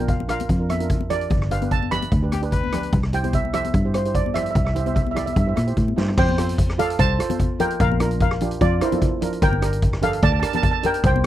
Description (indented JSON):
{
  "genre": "calypso",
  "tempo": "148 BPM",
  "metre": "4/4",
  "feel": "straight",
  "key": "F major",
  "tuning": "A4 = 439 Hz",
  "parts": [
    { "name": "steel pan", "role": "melody", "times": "0.0-11.3 s", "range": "E4 to B5", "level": "-24 LUFS", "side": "right 1 dB", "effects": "none" },
    { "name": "steel pan", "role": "accompaniment", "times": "0.0-11.3 s", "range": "D4 to D5", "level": "-30 LUFS", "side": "right 8 dB", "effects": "none" },
    { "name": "fingered electric bass", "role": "bass", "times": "0.0-11.3 s", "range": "G1 to Bb2", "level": "-23 LUFS", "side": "equal", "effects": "none" },
    { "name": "congas", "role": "percussion", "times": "0.0-11.2 s", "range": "none", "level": "-29 LUFS", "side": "left 7 dB", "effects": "none" },
    { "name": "street-band drum kit", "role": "drums", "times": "0.1-11.3 s", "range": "crash cymbal, hi-hat, kick drum, rim click, snare drum, toms", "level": "-23 LUFS", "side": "equal", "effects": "none" },
    { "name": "warm trumpet", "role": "second line", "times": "2.3-3.0 s", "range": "G4 to B4", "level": "-28 LUFS", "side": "left 8 dB", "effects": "none" }
  ],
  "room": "little or no reverb",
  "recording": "dry, close 1970s-style studio recording",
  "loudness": "-18 LUFS",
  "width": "side -13 dB against mid",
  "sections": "0.0-6.2 A section; 6.2-11.3 B section",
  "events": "drum fill 6.0",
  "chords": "0.0 Bb; 1.3 G; 2.9 C; 6.2 F; 7.8 Bbadd9; 9.4 Gmadd9",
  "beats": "0.09 0.49 0.90 | 1.30 1.71 2.12 2.52 | 2.93 3.34 3.75 4.15 | 4.56 4.96 5.37 5.78 | 6.18 6.59 6.99 7.40 | 7.80 8.21 8.61 9.02 | 9.42 9.83 10.23 10.64 | 11.04"
}